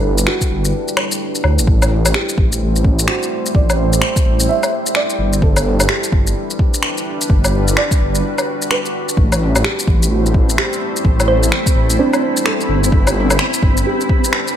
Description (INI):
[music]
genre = future garage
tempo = 128 BPM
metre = 4/4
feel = swing 63% on 16ths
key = unclear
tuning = A4 = 439 Hz
[part]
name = felt-muted upright piano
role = accompaniment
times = 0.0-14.6 s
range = C4 to E5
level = -23 LUFS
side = right 3 dB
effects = vintage 12-bit sampler grit, sidechain pumping, tape echo
[part]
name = deep dark ambient pad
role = sustained chords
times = 0.0-14.6 s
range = G3 to C5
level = -22 LUFS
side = equal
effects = chorus, built-in reverb, sidechain pumping
[part]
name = swelling detuned saw bass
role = bass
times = 0.0-13.8 s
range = G1 to D2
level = -17 LUFS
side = equal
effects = sidechain pumping
[part]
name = flickering grainy texture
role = texture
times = 0.0-1.7, 9.8-14.6 s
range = A3 to B5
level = -25 LUFS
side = left 1 dB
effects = built-in reverb
[part]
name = electronic shaker, finger snaps and woodblock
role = drums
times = 0.2-14.5 s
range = none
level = -19 LUFS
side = left 1 dB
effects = studio reverb
[part]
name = electronic kick drum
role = drums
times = 0.4-14.2 s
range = none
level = -14 LUFS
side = equal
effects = studio reverb
[part]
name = thumb-piano-like synth pluck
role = melody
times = 11.3-11.9 s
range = C5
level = -21 LUFS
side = right 3 dB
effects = chorus, phaser, cassette tape, ping-pong delay
[sound]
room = light reverb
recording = vinyl crackle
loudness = -13 LUFS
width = side -10 dB against mid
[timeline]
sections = 0.0-1.7 A section; 1.7-14.6 B section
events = kick drops out 0.7-1.7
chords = 0.0 G6; 1.7 Am7; 5.4 G6